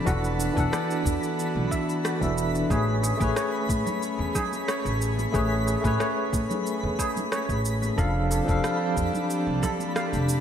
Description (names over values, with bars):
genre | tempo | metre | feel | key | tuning
sunset chillout | 91 BPM | 4/4 | straight | A major | A4 = 440 Hz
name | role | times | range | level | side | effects
tine electric piano | accompaniment | 0.0-10.4 s | E3 to F#5 | -28 LUFS | left 1 dB | fast tremolo, auto-pan, ping-pong delay
airy breathy pad | sustained chords | 0.0-10.4 s | E3 to A4 | -32 LUFS | right 1 dB | chorus
twinkling granular texture | texture | 0.0-10.4 s | B5 | -36 LUFS | equal | built-in reverb
steel pan | arpeggios | 0.1-10.1 s | F#4 to F5 | -34 LUFS | right 2 dB | ping-pong delay
upright bass | bass | 0.1-10.4 s | E1 to A2 | -27 LUFS | equal | none
electronic kick drum | drums | 0.1-9.8 s | none | -29 LUFS | equal | overdrive, studio reverb
electronic shaker and rim click | drums | 0.1-10.4 s | none | -35 LUFS | right 1 dB | overdrive, studio reverb
congas | percussion | 3.9-9.9 s | none | -38 LUFS | right 3 dB | none
room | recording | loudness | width
moderate lush hall reverb, RT60 1.7 s, small room ambience | bright 1980s-style digital production | -23 LUFS | side -9 dB against mid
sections
0.0-10.4 A section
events
none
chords
0.1 E9sus4; 2.7 Amaj9; 8.0 F6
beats
| 0.07 0.73 1.39 2.04 | 2.70 3.36 4.02 4.68 | 5.34 6.00 6.66 7.32 | 7.98 8.64 9.30 9.96